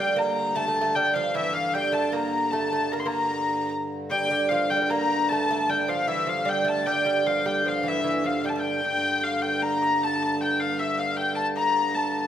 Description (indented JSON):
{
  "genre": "medieval dance",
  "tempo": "153 BPM",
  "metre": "3/4",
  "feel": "straight",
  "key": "G dorian",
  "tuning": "A4 = 440 Hz",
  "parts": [
    { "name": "clear hurdy-gurdy", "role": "melody", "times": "0.0-12.3 s", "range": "E5 to C6", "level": "-24 LUFS", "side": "left 2 dB", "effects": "none" },
    { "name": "lute", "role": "second line", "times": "0.0-8.8 s", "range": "E3 to Bb3", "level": "-28 LUFS", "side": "right 4 dB", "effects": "none" },
    { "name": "pedal harmonium", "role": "drone", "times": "0.0-12.3 s", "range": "G2 to D3", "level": "-30 LUFS", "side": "right 1 dB", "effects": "none" }
  ],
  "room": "moderate scoring stage reverb, RT60 1.7 s",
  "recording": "none",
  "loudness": "-22 LUFS",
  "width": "side -10 dB against mid",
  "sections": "0.0-8.8 A section; 8.8-12.3 A section",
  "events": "none",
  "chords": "none",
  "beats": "0.15 | 0.55 0.94 1.34 | 1.74 2.13 2.53 | 2.92 3.32 3.71 | 4.11 4.50 4.89 | 5.29 5.68 6.07 | 6.47 6.86 7.25 | 7.64 8.04 8.43 | 8.82 9.21 9.60 | 9.99 10.38 10.78 | 11.17 11.56 11.95"
}